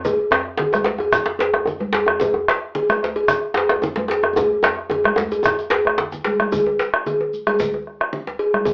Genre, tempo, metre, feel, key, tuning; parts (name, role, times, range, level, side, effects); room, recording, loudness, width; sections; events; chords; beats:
west african traditional, West African drum ensemble; 112 BPM; 4/4; straight
bombo; percussion; 0.0-8.7 s; -20 LUFS; equal
djembe; percussion; 0.0-8.7 s; -24 LUFS; equal
shekere; percussion; 0.0-8.7 s; -39 LUFS; equal
congas; percussion; 0.1-8.7 s; -28 LUFS; equal
cowbell; percussion; 0.1-8.7 s; -20 LUFS; equal
djembe; percussion; 0.3-6.1 s; -23 LUFS; equal
wet studio ambience, RT60 0.5 s; worn, warbling old tape, cassette tape, warbly pitch drift, AM radio sound; -17 LUFS; side -34 dB against mid
0.0-6.5 A section; 6.5-8.7 B section
drum fill 4.4-6.5
| 0.06 0.60 1.14 1.68 | 2.22 2.76 3.30 3.84 | 4.38 4.91 5.45 5.99 | 6.53 7.06 7.60 8.13 | 8.67